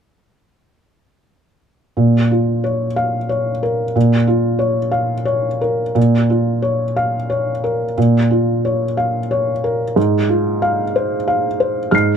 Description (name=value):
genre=neoclassical minimalist piano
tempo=90 BPM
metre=3/4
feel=rubato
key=Bb minor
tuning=A4 = 440 Hz
part: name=felt-muted upright piano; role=solo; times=2.0-12.2 s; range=Ab2 to C7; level=-15 LUFS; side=equal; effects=none
room=moderate studio reverb, RT60 0.5 s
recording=none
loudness=-15 LUFS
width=side -7 dB against mid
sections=2.0-6.0 A section; 6.0-12.2 B section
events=none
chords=2.0 Bbm; 10.0 Fm/Ab